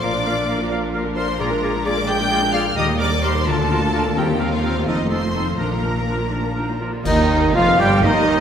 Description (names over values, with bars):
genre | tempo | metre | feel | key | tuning
classical, dramatic, fast romantic movement for symphony orchestra | 85 BPM (dotted quarters) | 6/8 | straight | Bb major | A4 = 439 Hz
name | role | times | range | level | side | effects
rich studio violin section | melody | 0.0-8.4 s | Eb5 to G6 | -26 LUFS | left 1 dB | none
mellow clarinet | second line | 0.0-8.4 s | C4 to Bb4 | -27 LUFS | equal | none
mellow hollow small flute group | second line | 0.0-8.4 s | Eb4 to G5 | -27 LUFS | left 1 dB | none
rich studio violin section | second line | 0.0-8.4 s | Eb4 to G5 | -28 LUFS | left 2 dB | none
warm oboe | second line | 0.0-8.4 s | A4 to G5 | -28 LUFS | right 1 dB | none
warm symphonic viola section | accompaniment | 0.0-8.4 s | Eb3 to Bb4 | -27 LUFS | right 1 dB | none
mellow French horn section | sustained chords | 0.0-8.4 s | Eb3 to F4 | -28 LUFS | left 3 dB | none
concert harp | arpeggios | 0.0-8.4 s | Bb2 to G5 | -28 LUFS | left 4 dB | none
rich symphonic cello section | bass | 0.0-8.4 s | D2 to Bb2 | -27 LUFS | right 2 dB | none
rich symphonic double bass section | bass | 0.0-8.4 s | F1 to Eb2 | -25 LUFS | right 2 dB | none
cymbal swell, clash cymbals and concert bass drum | percussion | 4.2-8.0 s | none | -30 LUFS | equal | none
clear tuba | bass | 7.0-8.4 s | F1 to Eb2 | -25 LUFS | right 3 dB | none
mellow trombone section | sustained chords | 7.1-8.4 s | Eb3 to G3 | -25 LUFS | right 2 dB | none
warm trumpet section | stabs | 7.1-8.4 s | Eb4 to G4 | -23 LUFS | right 2 dB | none
room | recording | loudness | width
wet concert hall reverb, RT60 2.5 s | none | -17 LUFS | side -8 dB against mid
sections
0.0-7.1 A section; 7.1-8.4 B section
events
band accent 7.1-7.5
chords
0.0 Bb; 1.4 Bb7; 2.8 Eb; 3.5 Bb/D; 4.2 Cm7/Eb; 4.9 F7; 5.6 Bb; 7.1 Eb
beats
| 0.03 0.72 | 1.40 2.09 | 2.78 3.48 | 4.17 4.88 | 5.60 6.32 | 7.05 7.80